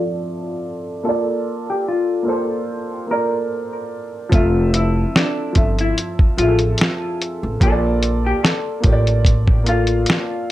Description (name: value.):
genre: lo-fi hip hop.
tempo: 73 BPM.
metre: 4/4.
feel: swing 56% on 16ths.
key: unclear.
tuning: A4 = 440 Hz.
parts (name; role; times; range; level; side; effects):
dark upright piano; accompaniment; 0.0-10.5 s; F3 to F5; -22 LUFS; right 2 dB; low-pass filter, plate reverb.
hollow-body jazz guitar; melody; 1.0-10.5 s; D4 to Bb4; -23 LUFS; left 3 dB; low-pass filter, tape echo, plate reverb.
upright bass; bass; 4.3-10.0 s; F1 to Bb1; -19 LUFS; equal; none.
lo-fi sampler-style drum kit; drums; 4.3-10.3 s; hi-hat, kick drum, snare drum; -16 LUFS; equal; none.
room: moderate studio reverb, RT60 0.6 s.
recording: none.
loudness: -16 LUFS.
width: side -15 dB against mid.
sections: 0.0-10.5 A section.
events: filter sweep 0.0-10.5.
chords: 0.0 Fmaj7; 1.0 Bbmaj7; 4.3 Fmaj7; 7.6 Bbmaj7.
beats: 0.21 | 1.04 1.86 2.68 3.50 | 4.32 5.15 5.97 6.79 | 7.61 8.43 9.26 10.08.